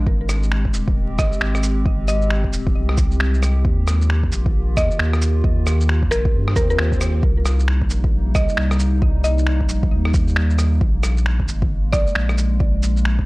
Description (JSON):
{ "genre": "future garage", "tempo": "134 BPM", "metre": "4/4", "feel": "swing 62% on 16ths", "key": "C minor", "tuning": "A4 = 442 Hz", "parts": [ { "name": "warbly tape-like pad", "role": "sustained chords", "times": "0.0-13.3 s", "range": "C3 to G4", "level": "-27 LUFS", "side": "equal", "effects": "chorus, built-in reverb, sidechain pumping" }, { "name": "warm sub bass", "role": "bass", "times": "0.0-13.3 s", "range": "Eb1 to G2", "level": "-18 LUFS", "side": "equal", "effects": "sidechain pumping" }, { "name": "electronic kick drum", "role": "drums", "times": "0.1-13.3 s", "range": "none", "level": "-20 LUFS", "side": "equal", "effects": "overdrive, vintage 12-bit sampler grit" }, { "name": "electronic rim click, cabasa, shaker and finger snaps", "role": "drums", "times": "0.3-13.2 s", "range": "none", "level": "-26 LUFS", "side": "equal", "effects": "vintage 12-bit sampler grit" }, { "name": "mallet-like synth pluck", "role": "melody", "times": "1.2-12.2 s", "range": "Bb4 to Eb5", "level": "-26 LUFS", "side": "equal", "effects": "chorus, analog delay" }, { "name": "swell", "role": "sound effects", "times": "6.5-7.2 s", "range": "none", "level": "-32 LUFS", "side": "left 1 dB", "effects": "none" } ], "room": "little or no reverb", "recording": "dry, gritty hardware recording, vinyl crackle", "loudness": "-16 LUFS", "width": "side -22 dB against mid", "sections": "0.0-13.3 A section", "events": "swell 6.5-7.2", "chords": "0.1 Abmaj7; 3.6 Eb; 7.2 Cm7; 10.8 Bb7(no3)" }